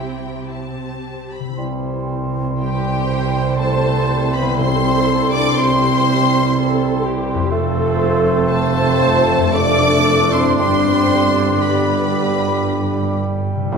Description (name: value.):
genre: classical.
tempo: 55-63 BPM.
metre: 3/4.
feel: rubato.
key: C major.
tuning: A4 = 440 Hz.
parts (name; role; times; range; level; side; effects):
warm symphonic violin section; melody; 0.0-13.2 s; G5 to D6; -23 LUFS; left 1 dB; none.
warm symphonic violin section; second line; 0.0-13.2 s; E4 to D5; -27 LUFS; left 4 dB; none.
dark symphonic viola section; accompaniment; 0.0-13.8 s; C4 to C5; -24 LUFS; equal; none.
concert harp; arpeggios; 0.0-13.8 s; F2 to D5; -25 LUFS; left 6 dB; none.
dark symphonic cello section; bass; 0.0-13.8 s; F2 to C3; -26 LUFS; right 3 dB; none.
warm symphonic double bass section; bass; 0.0-13.8 s; F1 to C2; -24 LUFS; right 7 dB; none.
mellow cor anglais; second line; 1.6-13.8 s; C5 to D5; -26 LUFS; right 2 dB; none.
warm clarinet; second line; 1.6-13.8 s; D4 to F4; -27 LUFS; equal; none.
clear bassoon; accompaniment; 1.6-13.8 s; G3 to A3; -26 LUFS; right 1 dB; none.
clear trombone section; sustained chords; 1.6-13.8 s; D3 to C4; -26 LUFS; right 2 dB; none.
warm tuba; bass; 1.6-13.8 s; F1 to C2; -26 LUFS; right 4 dB; none.
mellow silver concert flute; second line; 2.6-13.2 s; G5 to D6; -25 LUFS; left 4 dB; none.
mellow French horn section; sustained chords; 2.6-13.2 s; G3 to D4; -23 LUFS; equal; none.
timpani; percussion; 4.6-6.0, 13.7-13.8 s; C3; -26 LUFS; left 1 dB; none.
room: wet scoring stage reverb, RT60 1.7 s.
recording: minimal, uncompressed stereo recording.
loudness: -14 LUFS.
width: side -5 dB against mid.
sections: 0.0-1.6 A section; 1.6-13.8 A section.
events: none.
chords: 0.0 C; 7.5 F; 9.6 Dm/F; 10.6 G.